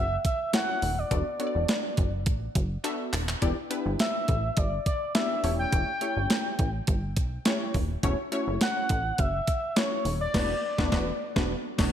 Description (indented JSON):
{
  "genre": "early-eighties boogie funk",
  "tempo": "104 BPM",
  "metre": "4/4",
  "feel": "straight",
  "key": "unclear",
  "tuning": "A4 = 443 Hz",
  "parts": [
    { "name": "expressive synth lead", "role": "melody", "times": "0.0-11.3 s", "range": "C#5 to G5", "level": "-30 LUFS", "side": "equal", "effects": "chorus" },
    { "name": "plucky analog bass", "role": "bass", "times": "0.0-11.9 s", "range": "D#1 to B1", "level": "-30 LUFS", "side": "equal", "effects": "none" },
    { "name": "clean 12-bit digital drum machine", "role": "drums", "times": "0.2-11.9 s", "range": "crash cymbal, handclaps, hi-hat, kick drum, snare drum", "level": "-28 LUFS", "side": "equal", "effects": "none" },
    { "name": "funky polysynth comp", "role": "accompaniment", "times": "0.5-11.9 s", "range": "A3 to E5", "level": "-32 LUFS", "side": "left 2 dB", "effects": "chorus" }
  ],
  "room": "moderate lush hall reverb, RT60 1.8 s",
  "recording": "bright 1980s-style digital production",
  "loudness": "-25 LUFS",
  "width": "side -10 dB against mid",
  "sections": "0.0-11.9 A section",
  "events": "drum fill 2.8-3.4, 11.5-11.9; band accent 10.3-11.9",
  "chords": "0.0 F#m7; 1.1 Bm7/E; 3.4 Em7; 5.4 A7/E; 8.0 F#m7/E; 10.3 Bm7/E"
}